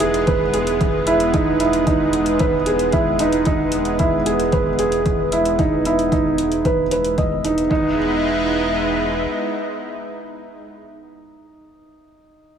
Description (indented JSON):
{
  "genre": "piano and strings electronica",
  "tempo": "113 BPM",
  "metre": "4/4",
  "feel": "straight",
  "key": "E major",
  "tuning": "A4 = 440 Hz",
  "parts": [
    { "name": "lush unison pad", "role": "sustained chords", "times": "0.0-10.7 s", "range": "G#3 to E4", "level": "-22 LUFS", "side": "equal", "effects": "chorus, sidechain pumping" },
    { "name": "felt-muted upright piano", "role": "riff", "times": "0.0-12.6 s", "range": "D#4 to D#5", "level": "-19 LUFS", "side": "right 2 dB", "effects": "digital delay" },
    { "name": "warm sub bass", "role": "bass", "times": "0.0-9.3 s", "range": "E1", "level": "-30 LUFS", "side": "equal", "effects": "sidechain pumping" },
    { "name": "electronic hi-hat", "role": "drums", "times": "0.0-7.7 s", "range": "none", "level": "-31 LUFS", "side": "left 2 dB", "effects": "overdrive" },
    { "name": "electronic kick drum", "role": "drums", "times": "0.3-7.8 s", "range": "none", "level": "-22 LUFS", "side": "equal", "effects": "overdrive" }
  ],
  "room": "moderate lush hall reverb, RT60 2.5 s",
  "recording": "none",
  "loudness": "-16 LUFS",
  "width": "side -8 dB against mid",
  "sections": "0.0-7.7 A section; 7.7-12.0 B section",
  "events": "filter sweep on analog synth pad 0.0-7.7",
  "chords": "0.0 Emaj7"
}